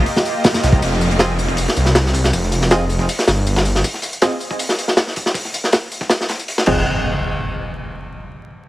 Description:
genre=drum and bass, jungle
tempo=159 BPM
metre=4/4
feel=straight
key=F minor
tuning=A4 = 440 Hz
part: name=lush unison pad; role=sustained chords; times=0.0-0.8, 6.7-6.8 s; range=Bb3 to Eb5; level=-25 LUFS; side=right 1 dB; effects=chorus, vintage 12-bit sampler grit
part: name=detuned saw bass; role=bass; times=0.0-3.8, 6.7-6.8 s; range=F1 to C2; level=-17 LUFS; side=equal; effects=tube saturation
part: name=crunchy breakbeat drum kit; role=drums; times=0.1-6.8 s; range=crash cymbal, hi-hat, kick drum, snare drum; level=-18 LUFS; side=equal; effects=high-pass filter on kick, high-pass filter on hats, high-pass filter on cymbals, high-pass filter on snare, high-pass filter on room
part: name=dusty soul sampler-style drum kit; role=drums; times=0.3-6.7 s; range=hi-hat, snare drum, tambourine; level=-27 LUFS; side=left 2 dB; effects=overdrive, high-pass filter on hats, high-pass filter on perc, high-pass filter on snare
part: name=downlifter and impact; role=sound effects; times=0.8-3.8, 6.7-8.2 s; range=none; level=-26 LUFS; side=equal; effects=none
part: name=band-passed chord stab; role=stabs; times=1.2-4.3, 6.7-6.8 s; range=C4 to Eb5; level=-23 LUFS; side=right 1 dB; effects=chorus, dub echo
room=little or no reverb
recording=heavily compressed radio sound, vinyl crackle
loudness=-15 LUFS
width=side -16 dB against mid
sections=0.8-6.9 A section; 6.9-8.4 B section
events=filter sweep on synth stab 0.8-6.9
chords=0.0 Ebadd9; 0.8 Fm7; 6.9 N.C.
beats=0.07 0.45 | 0.82 1.20 1.58 1.96 | 2.33 2.71 3.09 3.46 | 3.84 4.22 4.60 4.97 | 5.35 5.73 6.11 6.48 | 6.86 7.24 7.62 7.99

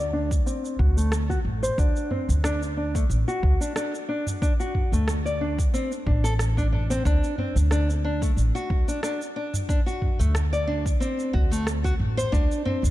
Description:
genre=organic downtempo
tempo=91 BPM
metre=4/4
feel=swing 54% on 16ths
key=unclear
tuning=A4 = 441 Hz
part: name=nylon-string guitar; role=arpeggios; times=0.0-12.8 s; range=A3 to D5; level=-27 LUFS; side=left 1 dB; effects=low-pass filter, ping-pong delay
part: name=upright bass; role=bass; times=0.0-12.9 s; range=A1 to D2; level=-24 LUFS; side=equal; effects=none
part: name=electronic kick drum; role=drums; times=0.3-12.5 s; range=none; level=-24 LUFS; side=equal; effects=none
part: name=organic electronic drum kit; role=drums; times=0.3-12.9 s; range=rim click, shaker, toms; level=-32 LUFS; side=right 1 dB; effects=none
room=light reverb, digital ambience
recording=dark, warm production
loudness=-22 LUFS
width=side -15 dB against mid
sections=0.0-12.9 A section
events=filter sweep on nylon-string guitar 0.0-12.9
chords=0.0 D7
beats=0.46 1.12 | 1.78 2.44 3.10 3.76 | 4.42 5.08 5.73 6.39 | 7.05 7.71 8.37 9.03 | 9.69 10.35 11.01 11.67 | 12.33

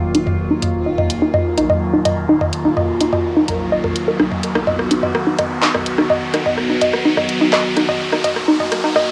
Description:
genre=melodic techno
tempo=126 BPM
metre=4/4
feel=straight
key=Eb minor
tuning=A4 = 440 Hz
part: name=evolving wavetable pad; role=sustained chords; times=0.0-9.1 s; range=Eb3 to F#4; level=-24 LUFS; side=equal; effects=phaser, built-in reverb, cassette tape
part: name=swelling detuned saw bass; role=bass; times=0.0-8.8 s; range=Eb1 to B1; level=-36 LUFS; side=equal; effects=none
part: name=riser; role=sound effects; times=0.0-9.1 s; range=none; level=-28 LUFS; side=equal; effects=none
part: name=analog pluck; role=arpeggios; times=0.1-9.1 s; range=Eb4 to Eb5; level=-19 LUFS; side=equal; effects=chorus, cassette tape, analog delay
part: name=techno drum kit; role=drums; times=0.1-9.1 s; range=handclaps, hi-hat, rim click, toms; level=-24 LUFS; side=equal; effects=overdrive, studio reverb, cassette tape
room=moderate studio ambience, RT60 0.5 s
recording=home recording on cassette, high-pass filter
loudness=-17 LUFS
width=mono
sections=0.0-9.1 A section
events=build-up 0.0-9.1; riser 0.0-9.1; filter sweep on synth arpeggio sound 0.0-9.1; filter sweep 0.0-9.1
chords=0.0 Ebmadd9; 4.2 B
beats=| 0.39 0.86 1.34 1.81 | 2.29 2.77 3.24 3.72 | 4.20 4.67 5.15 5.62 | 6.10 6.58 7.05 7.53 | 8.01 8.48 8.96

